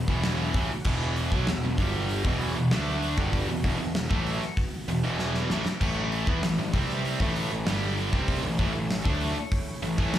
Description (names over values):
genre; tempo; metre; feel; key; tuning
hard rock; 97 BPM; 4/4; straight; unclear; A4 = 441 Hz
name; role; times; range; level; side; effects
warm analog pad; sustained chords; 0.0-10.2 s; E3 to C#5; -41 LUFS; equal; none
heavy high-gain guitar; riff; 0.0-10.2 s; E2 to D4; -36 LUFS; left 1 dB; none
tight distorted guitar; riff; 0.0-10.2 s; E2 to D4; -34 LUFS; left 9 dB; distortion
tight distorted guitar; riff; 0.0-10.2 s; E2 to D4; -31 LUFS; right 7 dB; distortion, slapback echo
fuzz picked electric bass; bass; 0.0-10.2 s; E1 to E2; -30 LUFS; equal; overdrive
gated 80s drum kit; drums; 0.1-10.2 s; crash cymbal, hi-hat, kick drum, snare drum; -29 LUFS; equal; none
room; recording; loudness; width
light reverb; live gig heard through the venue's PA, club reverb; -24 LUFS; side -12 dB against mid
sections
0.0-10.2 A section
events
drum fill 5.2-5.8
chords
0.0 E5; 5.8 A5